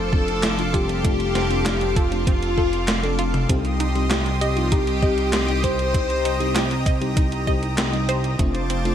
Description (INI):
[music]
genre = synthwave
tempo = 98 BPM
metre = 4/4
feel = straight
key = C dorian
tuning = A4 = 440 Hz
[part]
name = soft octave-layered synth lead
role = melody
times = 0.0-6.9 s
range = F4 to C5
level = -28 LUFS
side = left 2 dB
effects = chorus, tape echo, shimmer reverb
[part]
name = string machine, violins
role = second line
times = 0.0-6.8 s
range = F4 to C5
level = -30 LUFS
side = left 1 dB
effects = ensemble chorus, digital delay, shimmer reverb
[part]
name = lush unison pad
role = sustained chords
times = 0.0-8.9 s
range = F4 to Eb6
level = -29 LUFS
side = equal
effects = chorus, sidechain pumping, shimmer reverb
[part]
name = FM electric piano with soft pad layer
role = stabs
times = 0.0-8.9 s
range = G3 to A4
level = -29 LUFS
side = left 2 dB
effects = chorus, tremolo, vintage 12-bit sampler grit, digital delay, shimmer reverb
[part]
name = chorused synth bass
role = bass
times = 0.0-8.9 s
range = F1 to C2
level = -24 LUFS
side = equal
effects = none
[part]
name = wide unison pluck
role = arpeggios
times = 0.1-8.9 s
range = A3 to Eb5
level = -31 LUFS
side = right 3 dB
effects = digital delay, shimmer reverb
[part]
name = electronic kick drum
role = drums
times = 0.1-8.5 s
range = none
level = -21 LUFS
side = equal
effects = none
[part]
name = gated 80s digital drum machine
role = drums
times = 0.3-8.9 s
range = handclaps, hi-hat, snare drum, toms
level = -26 LUFS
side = equal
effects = gated reverb, gated reverb snare
[sound]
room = light reverb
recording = none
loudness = -19 LUFS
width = side -9 dB against mid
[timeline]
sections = 0.0-8.9 A section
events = none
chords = 0.0 F6; 3.5 Cm; 8.4 F6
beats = 0.43 | 1.04 1.66 2.27 2.88 | 3.49 4.11 4.72 5.33 | 5.94 6.55 7.17 7.78 | 8.39